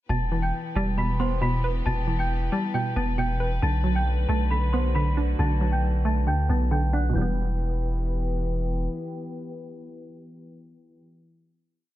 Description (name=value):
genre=hip hop, trap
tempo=136 BPM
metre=4/4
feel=half-time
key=E minor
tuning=A4 = 440 Hz
part: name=worn celesta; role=melody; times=0.1-8.4 s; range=C5 to B6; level=-30 LUFS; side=left 2 dB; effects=low-pass filter, dub echo
part: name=hollow square pluck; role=accompaniment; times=0.1-11.1 s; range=B2 to B4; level=-28 LUFS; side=right 2 dB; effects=chorus, low-pass filter, dub echo
part: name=dark chamber string section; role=sustained chords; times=0.1-11.0 s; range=D3 to B4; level=-34 LUFS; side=left 1 dB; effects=none
part: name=long sustained 808-style bass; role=bass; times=0.1-8.9 s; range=E1 to D2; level=-25 LUFS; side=equal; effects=none
room=studio reverb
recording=echo-heavy mix, low-pass filter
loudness=-23 LUFS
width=side -14 dB against mid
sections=0.1-7.2 breakdown; 7.2-10.7 final chord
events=filter sweep 0.1-7.2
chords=0.1 Em; 3.6 Bm7; 7.2 Em